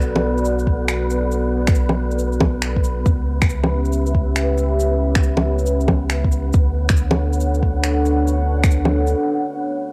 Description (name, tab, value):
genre	future garage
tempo	138 BPM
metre	4/4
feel	swing 65% on 16ths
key	B minor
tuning	A4 = 440 Hz
part	dark analog pad	sustained chords	0.0-9.9 s	B3 to F#5	-25 LUFS	equal	chorus, sidechain pumping, cassette tape
part	warm sub bass	bass	0.0-9.1 s	B1 to D2	-23 LUFS	equal	sidechain pumping
part	electronic shaker, bongos and finger snaps	drums	0.0-9.1 s	none	-24 LUFS	equal	cassette tape
part	wind-like tuned noise texture	texture	0.0-9.2 s	B3 to B4	-31 LUFS	equal	built-in reverb, cassette tape
part	electronic kick drum	drums	0.7-8.7 s	none	-20 LUFS	equal	cassette tape
room	light reverb, digital ambience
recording	home recording on cassette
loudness	-19 LUFS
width	mono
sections	0.0-9.9 A section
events	break 9.1-9.9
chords	0.0 Bm7; 3.1 C#m7b5; 6.5 Dmaj7